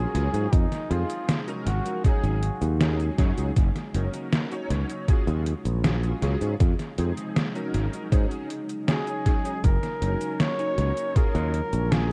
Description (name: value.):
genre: vaporwave.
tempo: 79 BPM.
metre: 4/4.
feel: straight.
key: unclear.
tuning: A4 = 440 Hz.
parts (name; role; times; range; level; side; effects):
warm flugelhorn; melody; 0.0-2.8, 8.9-12.1 s; Eb4 to Db5; -34 LUFS; equal; tape echo.
bright electric grand piano; accompaniment; 0.0-12.1 s; F3 to Db5; -36 LUFS; equal; ensemble chorus, vintage 12-bit sampler grit, tape echo.
warbly tape-like pad; sustained chords; 0.0-12.1 s; C3 to F4; -39 LUFS; equal; none.
modern bright fingered electric bass; bass; 0.0-12.1 s; Gb1 to Ab2; -27 LUFS; equal; none.
detuned 8-bit digital drum machine; drums; 0.1-12.1 s; cabasa, hi-hat, snare drum; -30 LUFS; equal; tape echo.
electronic kick drum; drums; 0.5-11.3 s; none; -24 LUFS; equal; none.
room: digital ambience.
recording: echo-heavy mix, cassette tape.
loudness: -25 LUFS.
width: mono.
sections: 0.0-12.1 A section.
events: none.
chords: 0.0 Ebm11 (rootless); 0.5 Fm7; 1.7 Ab7sus4; 3.6 Gb6; 5.1 Ebm11; 6.6 Fm7; 7.7 Ab7sus4; 9.6 Gb6; 11.2 Ebm11.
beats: | 0.53 1.29 2.05 2.81 | 3.56 4.33 5.08 5.84 | 6.60 7.36 8.12 8.88 | 9.64 10.40 11.16 11.92.